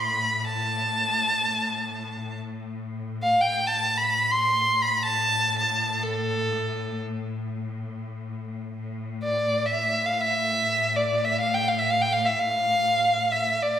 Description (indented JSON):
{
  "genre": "Turkish makam ensemble",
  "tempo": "free time",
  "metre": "none",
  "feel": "none",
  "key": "A makam ussak",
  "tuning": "A4 = 444 Hz",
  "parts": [
    { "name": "rich violin", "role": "melody", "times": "0.0-13.8 s", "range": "A4 to C6", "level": "-22 LUFS", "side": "equal", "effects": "none" },
    { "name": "bright studio cello section", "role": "drone", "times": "0.0-13.8 s", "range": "A2", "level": "-32 LUFS", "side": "left 2 dB", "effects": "none" }
  ],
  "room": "wet recital hall reverb, RT60 1.4 s",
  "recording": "recorded in a church or concert hall",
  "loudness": "-22 LUFS",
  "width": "side -10 dB against mid",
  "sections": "0.0-8.8 A section; 8.8-13.8 A section",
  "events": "none",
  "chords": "none",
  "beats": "free time"
}